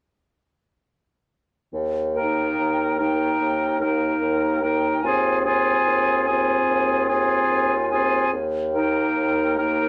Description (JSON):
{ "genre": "classical, slow romantic movement for wind quintet", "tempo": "73 BPM", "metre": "4/4", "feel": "rubato", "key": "Eb major", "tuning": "A4 = 440 Hz", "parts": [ { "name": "mellow bassoon", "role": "bass", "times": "1.7-9.9 s", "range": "Eb2", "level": "-28 LUFS", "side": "equal", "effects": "none" }, { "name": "bright concert flute", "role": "melody", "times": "2.1-9.9 s", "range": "G5 to Ab5", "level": "-28 LUFS", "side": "equal", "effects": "none" }, { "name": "mellow oboe", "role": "second line", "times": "2.2-9.9 s", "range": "Ab4 to Bb4", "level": "-28 LUFS", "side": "equal", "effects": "none" }, { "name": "bright clarinet", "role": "accompaniment", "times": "2.2-9.9 s", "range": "Eb4 to F4", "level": "-27 LUFS", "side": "equal", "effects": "none" }, { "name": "mellow French horn", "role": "accompaniment", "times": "2.2-9.9 s", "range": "Bb3 to C4", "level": "-30 LUFS", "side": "equal", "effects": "none" } ], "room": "moderate studio reverb, RT60 0.6 s", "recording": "none", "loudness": "-21 LUFS", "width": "mono", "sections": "1.7-9.9 A section", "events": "none", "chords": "1.7 Eb; 5.0 Fm7/Eb; 8.3 Eb" }